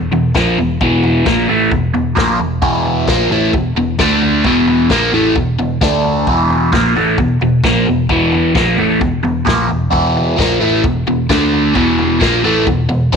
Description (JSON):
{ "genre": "garage rock duo or trio", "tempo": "132 BPM", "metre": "4/4", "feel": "straight", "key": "unclear", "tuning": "A4 = 439 Hz", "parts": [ { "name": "overdriven electric guitar", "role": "riff", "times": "0.0-13.2 s", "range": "E2 to D4", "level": "-12 LUFS", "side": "equal", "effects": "phaser" }, { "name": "picked electric bass", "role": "bass", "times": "0.0-13.2 s", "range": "E1 to D2", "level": "-20 LUFS", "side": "equal", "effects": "overdrive" }, { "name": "vintage drum kit", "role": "drums", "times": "0.1-13.2 s", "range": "kick drum, snare drum, toms", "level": "-20 LUFS", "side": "left 2 dB", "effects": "none" } ], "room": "light reverb, small room ambience", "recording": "1960s-style stereo", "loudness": "-11 LUFS", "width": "side -6 dB against mid", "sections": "0.0-13.2 A section", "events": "none", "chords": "0.0 E5; 4.0 D5; 4.4 E5; 5.8 D5; 6.3 E5; 11.3 D5; 11.8 E5" }